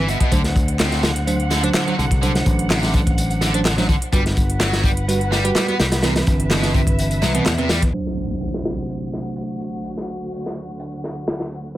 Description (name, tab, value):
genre	breakbeat, breaks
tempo	126 BPM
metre	4/4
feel	straight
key	D mixolydian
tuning	A4 = 439 Hz
part	dark studio string section	sustained chords	0.0-11.8 s	D2 to F#5	-28 LUFS	equal	sidechain pumping, low-pass filter
part	distorted electric guitar	riff	0.0-7.8 s	B2 to G4	-25 LUFS	equal	overdrive, tube saturation, dub echo
part	bell-like tine electric piano	stabs	0.0-11.8 s	E3 to C5	-25 LUFS	right 3 dB	vintage 12-bit sampler grit, low-pass filter, dub echo
part	picked electric bass	bass	0.0-7.9 s	G1 to E2	-21 LUFS	equal	none
part	crunchy breakbeat drum kit	drums	0.1-11.6 s	hi-hat, kick drum, snare drum	-20 LUFS	equal	high-pass filter on kick, high-pass filter on hats, high-pass filter on snare, high-pass filter on room
part	house drum kit	drums	0.2-7.9 s	handclaps, hi-hat	-29 LUFS	right 1 dB	none
part	impact	sound effects	7.9-9.8 s	none	-30 LUFS	equal	none
room	light reverb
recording	low-pass filter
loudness	-17 LUFS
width	side -14 dB against mid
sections	0.0-7.9 A section; 7.9-11.8 B section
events	impact 7.9-9.8; filter sweep on string section 7.9-11.8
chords	0.3 D7; 4.1 Gmaj7; 6.0 Cmaj7; 7.9 D7